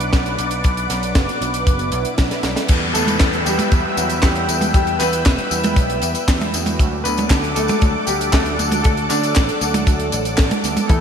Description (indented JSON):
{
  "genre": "italo disco",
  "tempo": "117 BPM",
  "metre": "4/4",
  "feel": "straight",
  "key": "E minor",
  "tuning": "A4 = 440 Hz",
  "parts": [
    { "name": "warm grand piano", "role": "melody", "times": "0.0-11.0 s", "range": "F#3 to D5", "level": "-24 LUFS", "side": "left 2 dB", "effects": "lush chorus, ping-pong delay" },
    { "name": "lush unison pad", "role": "sustained chords", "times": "0.0-11.0 s", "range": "A4 to E6", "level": "-24 LUFS", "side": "equal", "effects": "chorus, phaser" },
    { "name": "mellow synth brass", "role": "stabs", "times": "0.0-11.0 s", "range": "B2 to B4", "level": "-27 LUFS", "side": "right 3 dB", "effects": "chorus, ping-pong delay" },
    { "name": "picked electric bass", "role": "bass", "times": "0.0-11.0 s", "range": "E1 to E2", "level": "-25 LUFS", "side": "equal", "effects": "none" },
    { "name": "tight funk drum kit", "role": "drums", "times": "0.0-11.0 s", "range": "crash cymbal, handclaps, hi-hat, snare drum, tambourine, toms", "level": "-21 LUFS", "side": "right 1 dB", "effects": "studio reverb, gated reverb" },
    { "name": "kick drum", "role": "drums", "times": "0.1-11.0 s", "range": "none", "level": "-15 LUFS", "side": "equal", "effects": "studio reverb" },
    { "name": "swell and downlifter", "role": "sound effects", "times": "1.8-6.8 s", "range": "none", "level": "-27 LUFS", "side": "left 1 dB", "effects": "none" },
    { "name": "analog pluck", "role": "arpeggios", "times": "10.9-11.0 s", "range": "E3", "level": "-21 LUFS", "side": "right 1 dB", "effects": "chorus, cassette tape" }
  ],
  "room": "moderate lush hall reverb, RT60 2.5 s",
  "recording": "bright 1980s-style digital production",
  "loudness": "-15 LUFS",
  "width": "side -7 dB against mid",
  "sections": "0.0-2.7 A section; 2.7-11.0 B section",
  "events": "swell 1.8-2.7; drum fill 2.3-2.7",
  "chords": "0.0 Bm; 2.7 Em; 6.8 D"
}